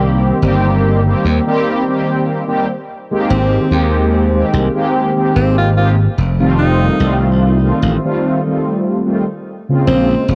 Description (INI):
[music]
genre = vaporwave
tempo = 73 BPM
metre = 4/4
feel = swing 55% on 16ths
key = unclear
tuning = A4 = 439 Hz
[part]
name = mellow synth brass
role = accompaniment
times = 0.0-10.3 s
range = Db3 to G4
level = -17 LUFS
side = equal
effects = lush chorus, analog delay
[part]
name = glassy slap bass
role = bass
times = 0.0-10.3 s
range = F1 to Eb2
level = -16 LUFS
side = equal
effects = none
[part]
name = warm alto saxophone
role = melody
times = 3.3-10.3 s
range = C4 to F4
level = -22 LUFS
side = equal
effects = tape echo
[sound]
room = light reverb, small room ambience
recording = cassette tape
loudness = -14 LUFS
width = mono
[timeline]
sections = 0.0-10.3 A section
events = none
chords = 0.0 Cm7; 3.3 Abmaj9; 6.6 F7